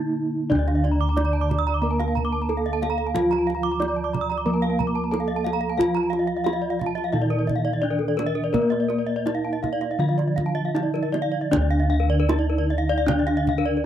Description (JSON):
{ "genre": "Balinese gamelan", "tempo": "77-91 BPM", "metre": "4/4", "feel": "straight", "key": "D pelog", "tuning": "A4 = 441 Hz", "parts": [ { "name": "gamelan-type bronze metallophone", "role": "melody", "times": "0.0-13.8 s", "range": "Bb3 to D5", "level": "-27 LUFS", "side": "equal", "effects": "none" }, { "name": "gamelan-type bronze metallophone", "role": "accompaniment", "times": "0.0-13.9 s", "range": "D3 to Bb3", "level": "-31 LUFS", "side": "right 1 dB", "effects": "none" }, { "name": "gamelan-type bossed gongs", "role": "bass", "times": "0.0-13.9 s", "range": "D2 to Bb4", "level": "-24 LUFS", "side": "equal", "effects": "none" }, { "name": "gamelan-type bronze metallophone", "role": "arpeggios", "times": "0.5-13.9 s", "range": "A4 to D6", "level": "-29 LUFS", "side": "left 8 dB", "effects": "none" }, { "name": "kendang", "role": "percussion", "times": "0.5-13.6 s", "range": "none", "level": "-30 LUFS", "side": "right 5 dB", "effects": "none" }, { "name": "gamelan-type bronze metallophone", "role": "arpeggios", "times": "0.7-13.8 s", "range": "Bb4 to Eb6+35c", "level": "-29 LUFS", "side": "right 8 dB", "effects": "none" } ], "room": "little or no reverb", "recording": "dry, close 1970s-style studio recording", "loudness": "-20 LUFS", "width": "side -10 dB against mid", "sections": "0.5-11.5 A section; 11.5-13.9 B section", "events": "break 0.0-0.5", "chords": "none" }